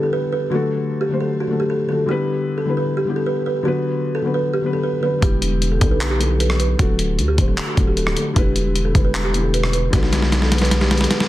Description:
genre	hip hop, trap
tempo	153 BPM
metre	4/4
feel	half-time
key	E minor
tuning	A4 = 440 Hz
part	buzzing kalimba	melody	0.0-11.3 s	F#4 to B4	-23 LUFS	right 2 dB	low-pass filter, tape echo
part	felt-muted upright piano	accompaniment	0.0-11.3 s	D3 to C5	-22 LUFS	left 3 dB	low-pass filter
part	growling 808-style bass	bass	5.2-11.1 s	D1 to D2	-20 LUFS	equal	none
part	dusty soul sampler-style drum kit	drums	5.2-11.3 s	handclaps, hi-hat, kick drum, rim click, snare drum	-19 LUFS	equal	none
room	little or no reverb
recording	dense, heavily limited modern master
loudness	-16 LUFS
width	side -15 dB against mid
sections	0.0-11.3 A section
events	drum fill 9.9-11.3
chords	0.0 Em7; 0.5 D; 2.1 Em7; 3.7 Bm; 5.2 Em7; 6.8 D; 8.4 Em7; 9.9 Bm

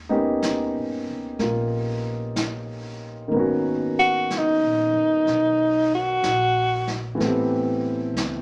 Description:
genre	jazz ballad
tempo	62 BPM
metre	4/4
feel	swing 66% on 8ths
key	unclear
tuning	A4 = 440 Hz
part	upright bass	bass	0.0-8.4 s	G1 to G2	-35 LUFS	equal	none
part	warm grand piano	accompaniment	0.1-8.4 s	D#3 to G4	-27 LUFS	equal	none
part	vintage brush drum kit	drums	0.4-8.4 s	brushed snare drum, hi-hat, snare drum	-35 LUFS	equal	none
part	breathy tenor saxophone	melody	4.0-7.2 s	D#4 to F#4	-22 LUFS	equal	none
room	moderate club reverb, RT60 0.7 s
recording	none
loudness	-23 LUFS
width	mono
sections	0.0-8.4 A section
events	tenor saxophone solo 0.0-8.4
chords	0.0 D#7b13; 3.3 G#m11; 7.2 Am9

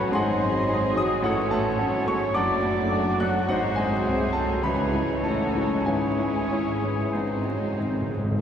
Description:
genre	classical, romantic movement for piano and orchestra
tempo	91-111 BPM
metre	4/4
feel	rubato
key	unclear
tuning	A4 = 440 Hz
part	clear grand piano	melody	0.0-8.4 s	C#2 to F#6	-26 LUFS	left 1 dB	none
part	rich symphonic violin section	melody	0.0-8.2 s	D4 to G#4	-37 LUFS	left 3 dB	none
part	clear oboe	second line	0.0-8.1 s	B#4 to D#5	-35 LUFS	right 1 dB	none
part	mellow small flute group	second line	0.0-7.8 s	F#5 to F#6	-34 LUFS	equal	none
part	rich studio violin section	second line	0.0-8.2 s	B#3 to F#4	-35 LUFS	left 1 dB	none
part	warm clarinet	second line	0.0-7.7 s	F#4 to F#5	-34 LUFS	left 1 dB	none
part	bright symphonic viola section	accompaniment	0.0-8.2 s	E3 to A3	-34 LUFS	right 1 dB	none
part	mellow bassoon	accompaniment	0.0-8.4 s	C#3 to G#3	-34 LUFS	right 2 dB	none
part	mellow French horn section	sustained chords	0.0-8.1 s	D#3 to D#4	-31 LUFS	equal	none
part	clear symphonic double bass section	bass	0.0-8.2 s	F#1 to C#2	-33 LUFS	right 1 dB	none
part	rich symphonic cello section	bass	0.0-8.4 s	F#2 to C#3	-34 LUFS	right 1 dB	none
part	timpani	percussion	7.2-8.4 s	G#2	-31 LUFS	equal	none
room	wet cathedral reverb, RT60 5.6 s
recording	recorded in a church or concert hall, vinyl crackle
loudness	-22 LUFS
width	side -8 dB against mid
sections	0.0-8.4 A section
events	timpani fill 7.1-8.4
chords	0.1 G#7; 1.2 A6; 2.4 D/F#; 3.5 G#7; 4.6 C#m; 5.9 C#m/G#; 7.1 G#

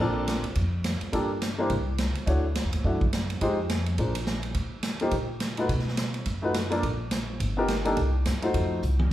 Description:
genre	jazz, big band swing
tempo	211 BPM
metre	4/4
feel	swing 59% on 8ths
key	Bb major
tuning	A4 = 441 Hz
part	warm baby grand piano	accompaniment	0.0-8.8 s	Ab3 to E5	-28 LUFS	left 1 dB	none
part	upright bass	bass	0.0-9.1 s	G1 to B2	-28 LUFS	equal	none
part	swinging big-band drum kit	drums	0.3-9.0 s	hi-hat, kick drum, ride cymbal, snare drum, toms	-30 LUFS	right 1 dB	none
room	moderate large studio reverb, RT60 1.0 s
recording	heard from further back in the room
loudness	-25 LUFS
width	side -13 dB against mid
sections	0.0-9.1 A section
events	drum fill 8.8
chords	0.0 Bbmaj9; 1.1 Gm7; 1.7 N.C.; 2.3 Dmaj9; 3.4 Fm9; 4.0 Bb7; 4.6 Ebsus2; 5.7 B7(no3); 6.8 N.C.; 7.4 G7alt; 8.0 F7b9

